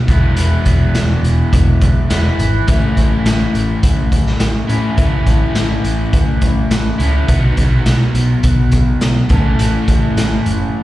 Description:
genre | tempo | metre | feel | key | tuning
classic rock | 104 BPM | 4/4 | straight | unclear | A4 = 440 Hz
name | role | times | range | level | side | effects
raw garage guitar | riff | 0.0-10.8 s | E2 to A4 | -18 LUFS | left 1 dB | overdrive, slapback echo
overdriven picked electric bass | bass | 0.1-10.6 s | E1 to A2 | -16 LUFS | equal | none
raw garage drum kit | drums | 0.1-10.6 s | hi-hat, kick drum, snare drum | -15 LUFS | equal | none
room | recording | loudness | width
small room reverb | live gig heard through the venue's PA, recital hall reverb | -12 LUFS | side -15 dB against mid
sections
0.0-10.8 A section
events
none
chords
0.1 E; 2.7 A; 7.3 B; 9.3 A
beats
| 0.37 0.95 1.52 2.10 | 2.68 3.25 3.83 4.41 | 4.98 5.56 6.13 6.71 | 7.28 7.86 8.43 9.01 | 9.58 10.16 10.73

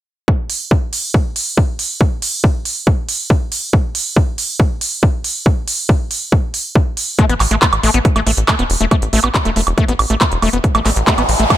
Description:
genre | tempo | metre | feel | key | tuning
psychedelic trance | 139 BPM | 4/4 | straight | unclear | A4 = 440 Hz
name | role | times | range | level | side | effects
electronic kick drum | drums | 0.3-11.6 s | none | -13 LUFS | equal | none
techno drum kit | drums | 0.5-11.6 s | handclaps, hi-hat, woodblock | -17 LUFS | right 2 dB | none
screaming distorted acid line | riff | 7.2-11.5 s | A3 to B3 | -19 LUFS | moving between left 6 dB and right 1 dB | distortion, chorus, auto-pan, sidechain pumping, dub echo
tight sequencer bass | bass | 7.3-11.5 s | E1 to A1 | -17 LUFS | equal | none
riser | sound effects | 10.8-11.6 s | none | -18 LUFS | equal | none
room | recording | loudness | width
little or no reverb | none | -13 LUFS | side -13 dB against mid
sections
0.3-11.6 A section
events
riser 10.8-11.6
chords
0.3 A5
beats
| 0.28 0.71 1.14 1.57 | 2.01 2.44 2.87 3.30 | 3.73 4.17 4.60 5.03 | 5.46 5.89 6.32 6.75 | 7.19 7.62 8.05 8.48 | 8.91 9.35 9.78 10.21 | 10.64 11.07 11.50

